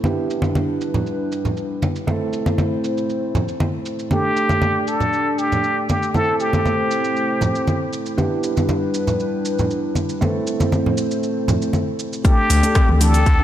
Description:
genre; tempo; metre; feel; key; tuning
afro house; 118 BPM; 4/4; straight; A minor; A4 = 440 Hz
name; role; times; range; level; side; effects
dark analog pad; sustained chords; 0.0-13.4 s; G3 to D6; -25 LUFS; left 1 dB; lush chorus, sidechain pumping
felt-muted upright piano; stabs; 0.0-13.4 s; A3 to A4; -25 LUFS; right 3 dB; sidechain pumping, low-pass filter, ping-pong delay
congas; percussion; 0.0-11.8 s; none; -22 LUFS; right 1 dB; none
house drum kit; drums; 0.1-13.4 s; cabasa, hi-hat, rim click, toms; -29 LUFS; equal; low-pass filter on perc, studio ambience, low-pass filter on hats, low-pass filter on snare, low-pass filter on toms
trumpet with plunger mute; melody; 4.1-7.9, 12.3-13.4 s; G4 to A4; -21 LUFS; equal; ping-pong delay
kalimba; arpeggios; 12.2-13.1 s; E3 to C4; -24 LUFS; left 2 dB; vintage 12-bit sampler grit, sidechain pumping, ping-pong delay
electronic kick drum; drums; 12.2-13.4 s; none; -15 LUFS; equal; studio ambience
smooth gliding synth bass; bass; 12.5-13.4 s; D2; -16 LUFS; equal; sidechain pumping
room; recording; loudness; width
light reverb, studio reverb; none; -17 LUFS; side -11 dB against mid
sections
0.0-12.2 A section; 12.2-13.4 B section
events
drop 12.2-13.4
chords
0.0 Em7; 2.1 Am; 4.1 Dsus4; 6.1 Am; 8.2 Em7; 10.2 Am; 12.2 N.C.

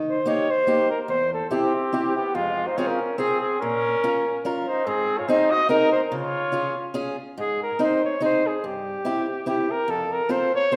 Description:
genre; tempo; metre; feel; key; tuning
alpine folk, alpine dance band; 144 BPM; 3/4; swing 54% on 8ths; Db major, Ab major from 7.4 s; A4 = 441 Hz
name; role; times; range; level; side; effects
fingerpicked acoustic archtop guitar; accompaniment; 0.0-10.8 s; E2 to Bb4; -28 LUFS; equal; none
warm flugelhorn; melody; 0.1-10.8 s; F4 to Eb5; -26 LUFS; equal; none
mellow trumpet; second line; 1.5-6.9 s; Ab3 to Gb4; -32 LUFS; equal; none
room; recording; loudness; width
wet recital hall reverb, RT60 1.3 s; recorded in a church or concert hall; -23 LUFS; mono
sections
0.0-7.4 A section; 7.4-10.8 B section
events
none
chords
0.0 Eb; 1.1 C/E; 2.4 Fm; 3.6 Bbm; 4.9 Ab; 6.1 Db; 7.4 Ab; 8.6 C/G; 9.9 F

